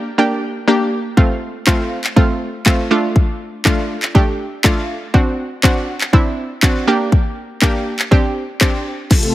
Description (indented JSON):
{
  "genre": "dance-pop",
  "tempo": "121 BPM",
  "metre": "4/4",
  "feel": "straight",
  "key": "unclear",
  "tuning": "A4 = 439 Hz",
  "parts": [
    { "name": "analog pluck", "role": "accompaniment", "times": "0.2-8.9 s", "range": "A3 to G4", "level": "-17 LUFS", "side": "right 1 dB", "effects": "chorus, sidechain pumping" },
    { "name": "house drum kit", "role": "drums", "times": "1.2-9.3 s", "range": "crash cymbal, handclaps, hi-hat, kick drum, snare drum", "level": "-14 LUFS", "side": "equal", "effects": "none" },
    { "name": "supersaw pad", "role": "sustained chords", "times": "9.1-9.3 s", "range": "C3 to A4", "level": "-18 LUFS", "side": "left 1 dB", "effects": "sidechain pumping" }
  ],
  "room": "light reverb",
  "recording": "heavily compressed radio sound",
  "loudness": "-14 LUFS",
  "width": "side -15 dB against mid",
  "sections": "0.0-9.1 A section",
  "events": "drum fill 9.1",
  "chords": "0.0 Gm; 1.2 F; 2.9 Dm; 5.1 D7; 6.9 Gm; 8.1 Csus2"
}